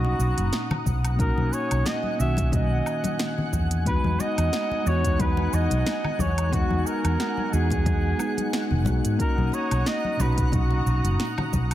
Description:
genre	sunset chillout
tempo	90 BPM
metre	4/4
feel	swing 55% on 16ths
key	B major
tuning	A4 = 440 Hz
part	clear flugelhorn	melody	0.0-11.5 s	F#4 to E5	-30 LUFS	equal	tape echo
part	mellow tine electric piano	accompaniment	0.0-11.7 s	A#2 to G#4	-29 LUFS	moving between left 4 dB and right 4 dB	auto-pan, low-pass filter, tape echo
part	lush unison pad	sustained chords	0.0-11.7 s	D#4 to D#6	-34 LUFS	left 1 dB	chorus
part	mellow fretless electric bass	bass	0.0-11.7 s	E1 to G#2	-24 LUFS	equal	none
part	congas	percussion	0.0-11.7 s	none	-32 LUFS	left 4 dB	none
part	twinkling granular texture	texture	0.0-11.7 s	F#5 to F#6	-39 LUFS	left 2 dB	built-in reverb
part	deep house drum kit	drums	0.2-11.7 s	hi-hat, shaker, snare drum, woodblock	-32 LUFS	right 1 dB	none
part	electronic kick drum	drums	0.9-11.7 s	none	-27 LUFS	equal	none
room	light reverb, digital ambience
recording	none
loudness	-22 LUFS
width	side -13 dB against mid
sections	0.0-11.7 A section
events	none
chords	0.0 Bmaj7; 3.9 Emaj9; 9.2 Bmaj7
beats	0.53 | 1.20 1.86 2.53 3.19 | 3.86 4.53 5.20 5.86 | 6.53 7.20 7.86 8.53 | 9.20 9.86 10.53 11.20

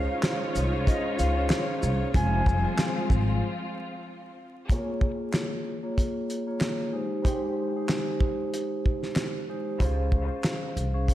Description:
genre	hip hop, boom-bap hip-hop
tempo	94 BPM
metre	4/4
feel	swing 59% on 16ths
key	Bb dorian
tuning	A4 = 441 Hz
part	breathy mellow jazz flute	melody	0.0-2.9 s	Eb5 to Ab5	-34 LUFS	left 1 dB	high-pass filter, low-pass filter, ping-pong delay
part	vibraphone with medium mallets	accompaniment	0.0-11.1 s	F3 to F5	-30 LUFS	equal	high-pass filter, low-pass filter
part	warm studio string section	sustained chords	0.0-4.7 s	F3 to F4	-36 LUFS	equal	high-pass filter, low-pass filter
part	warm studio string section	stabs	0.0-10.1 s	G3 to Db5	-36 LUFS	equal	high-pass filter, low-pass filter, ping-pong delay
part	upright bass	bass	0.0-3.4, 9.8-11.1 s	F1 to Db2	-26 LUFS	equal	none
part	cloth-damped thuddy drum kit	drums	0.2-11.1 s	handclaps, hi-hat, kick drum, shaker, snare drum	-27 LUFS	equal	none
room	moderate lush hall reverb, RT60 1.9 s, small room ambience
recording	dreamy mix soaked in reverb, vinyl crackle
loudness	-25 LUFS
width	side -13 dB against mid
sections	0.0-4.7 A section; 4.7-11.1 B section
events	break 3.4-4.7; filter sweep 4.7-11.1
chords	0.0 Dbmaj7; 2.1 Fmadd9; 4.7 Bbm7; 6.9 Abmaj7; 9.8 Dbmaj7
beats	0.23 0.87 1.50 | 2.14 2.78 3.42 4.06 | 4.70 5.33 5.97 6.61 | 7.25 7.89 8.53 9.16 | 9.80 10.44 11.08

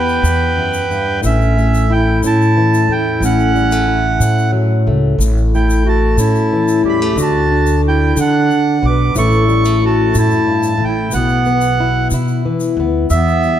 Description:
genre	acoustic folk duo or small band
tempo	61 BPM (dotted quarters)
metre	6/8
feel	straight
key	unclear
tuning	A4 = 440 Hz
part	accordion	melody	0.0-13.6 s	B4 to D6	-18 LUFS	right 3 dB	none
part	fingerpicked plugged-in steel-string acoustic guitar	accompaniment	0.0-13.6 s	E2 to G4	-17 LUFS	left 3 dB	none
part	upright bass	bass	0.0-13.6 s	A1 to D3	-16 LUFS	equal	none
part	tube shaker	percussion	0.1-13.5 s	none	-30 LUFS	left 5 dB	none
part	clear clarinet	second line	1.3-13.6 s	B3 to B4	-19 LUFS	right 3 dB	none
room	moderate scoring stage reverb, RT60 1.7 s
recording	dark, warm production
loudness	-12 LUFS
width	side -10 dB against mid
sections	0.0-1.2 A section; 1.2-13.6 B section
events	accordion solo 0.0-1.2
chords	0.0 Em; 1.2 A; 3.2 F#m7/A; 5.2 A; 7.2 D; 9.1 A; 11.1 Bsus4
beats	0.24 | 1.23 2.22 | 3.21 4.20 | 5.19 6.18 | 7.17 8.16 | 9.15 10.14 | 11.12 12.11 | 13.10

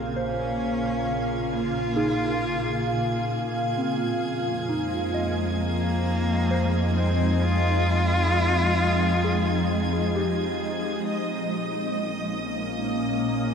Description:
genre	ambient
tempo	66 BPM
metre	4/4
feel	straight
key	Bb minor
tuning	A4 = 440 Hz
part	warm cello	melody	0.0-10.1 s	Ab3 to F4	-29 LUFS	left 1 dB	shimmer reverb, ping-pong delay
part	shimmering ambient pad	sustained chords	0.0-13.5 s	Bb2 to F5	-26 LUFS	equal	chorus, built-in reverb, shimmer reverb
part	soft synth bell	arpeggios	0.0-11.2 s	C4 to Eb5	-32 LUFS	equal	chorus, phaser, shimmer reverb, ping-pong delay
part	round analog bass	bass	0.0-13.5 s	Bb1 to F2	-28 LUFS	equal	none
part	bowed-like drone	drone	0.1-13.5 s	Bb3	-40 LUFS	left 2 dB	none
part	clear studio violin section	texture	0.0-13.5 s	Ab4 to Ab6	-36 LUFS	right 2 dB	shimmer reverb
room	wet lush hall reverb, RT60 2.7 s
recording	none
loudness	-22 LUFS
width	side -7 dB against mid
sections	0.0-11.1 A section; 11.1-13.5 B section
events	fade-in on analog synth bass 0.0-11.1; fade-in on violin section 0.0-11.1; fade-in on cello 0.0-11.1; filter sweep on ambient pad 0.0-11.1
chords	0.0 Bbm; 3.8 Fm7; 11.1 Bbm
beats	| 0.15 1.06 1.97 2.88 | 3.79 4.70 5.60 6.51 | 7.42 8.33 9.24 10.15 | 11.06 11.97 12.88

